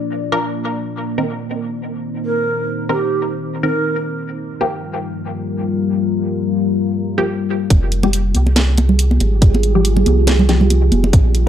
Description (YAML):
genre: deep dubstep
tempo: 140 BPM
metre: 4/4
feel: swing 56% on 16ths, half-time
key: F dorian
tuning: A4 = 440 Hz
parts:
  - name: deep dark ambient pad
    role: sustained chords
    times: 0.0-11.5 s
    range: G3 to D5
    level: -21 LUFS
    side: left 1 dB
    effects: chorus, built-in reverb
  - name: filtered dub chord stab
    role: stabs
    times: 0.3-10.6 s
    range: Eb3 to Bb4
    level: -22 LUFS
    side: left 2 dB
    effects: phaser, dub echo
  - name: low ney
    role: melody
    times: 2.2-4.0 s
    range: G4 to Bb4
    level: -21 LUFS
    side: right 2 dB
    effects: dub echo
  - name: soft dub sub bass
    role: bass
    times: 7.7-11.5 s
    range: F1 to C2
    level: -14 LUFS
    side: equal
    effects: none
  - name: electronic kick drum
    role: drums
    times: 7.7-11.2 s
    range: none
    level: -13 LUFS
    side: equal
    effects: none
  - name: garage drum kit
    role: drums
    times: 7.7-11.4 s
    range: hi-hat, snare drum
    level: -20 LUFS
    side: right 1 dB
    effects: none
  - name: congas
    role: percussion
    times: 7.7-11.1 s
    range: none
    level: -20 LUFS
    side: right 2 dB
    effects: dub echo
room: light reverb, digital ambience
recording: dark, warm production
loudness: -15 LUFS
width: side -10 dB against mid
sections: 0.0-7.7 A section; 7.7-11.5 B section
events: build-up 7.7-11.5; filter sweep on synth stab 7.7-11.5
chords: 0.0 Bb; 0.8 Cm7; 4.3 Gm7; 7.7 Fmadd9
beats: 0.42 | 0.85 1.28 1.70 2.13 | 2.56 2.99 3.42 3.85 | 4.28 4.70 5.13 5.56 | 5.99 6.42 6.85 7.28 | 7.70 8.13 8.56 8.99 | 9.42 9.85 10.28 10.70 | 11.13